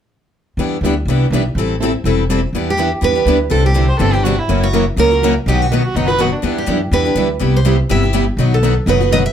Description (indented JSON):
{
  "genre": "acoustic string swing (jazz manouche)",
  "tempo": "246 BPM",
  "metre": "4/4",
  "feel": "swing 54% on 8ths",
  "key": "E minor",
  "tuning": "A4 = 440 Hz",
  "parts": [
    { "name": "picked plugged-in steel-string acoustic guitar", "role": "accompaniment", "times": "0.6-9.2 s", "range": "B2 to C5", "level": "-20 LUFS", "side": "right 4 dB", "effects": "none" },
    { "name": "picked steel-string acoustic guitar", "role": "accompaniment", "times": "0.6-9.2 s", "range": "B2 to A4", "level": "-19 LUFS", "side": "left 8 dB", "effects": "none" },
    { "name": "upright bass", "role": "bass", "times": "0.6-9.3 s", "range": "E1 to F#2", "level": "-17 LUFS", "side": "equal", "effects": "none" },
    { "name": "picked steel-string acoustic guitar", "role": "melody", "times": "2.7-9.3 s", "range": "F#4 to E5", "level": "-18 LUFS", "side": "right 4 dB", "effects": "none" },
    { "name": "dark violin", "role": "second line", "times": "3.9-6.5 s", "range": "D4 to C5", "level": "-20 LUFS", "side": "right 2 dB", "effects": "none" }
  ],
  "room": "moderate studio reverb, RT60 0.5 s",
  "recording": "none",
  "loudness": "-13 LUFS",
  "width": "side -9 dB against mid",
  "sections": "0.6-2.5 A section; 2.5-9.3 B section",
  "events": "none",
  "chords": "0.6 Em7; 1.6 Am7; 2.5 Em7; 3.5 Cadd9; 4.5 F#7; 5.5 B; 6.4 Em7; 7.4 Cmaj7; 8.4 B"
}